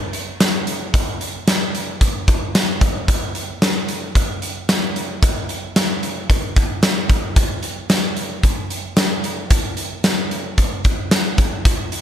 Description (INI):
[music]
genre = pop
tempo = 112 BPM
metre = 4/4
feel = straight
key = none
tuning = none
[part]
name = huge arena drum kit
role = drums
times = 0.1-12.0 s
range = hi-hat, kick drum, snare drum, tambourine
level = -17 LUFS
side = equal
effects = none
[sound]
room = light reverb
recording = bright 1980s-style digital production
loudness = -17 LUFS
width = side -10 dB against mid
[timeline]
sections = 0.0-12.0 A section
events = none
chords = none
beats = 0.40 | 0.94 1.48 2.01 2.55 | 3.08 3.62 4.15 4.69 | 5.22 5.76 6.30 6.83 | 7.37 7.90 8.44 8.97 | 9.51 10.05 10.58 11.12 | 11.65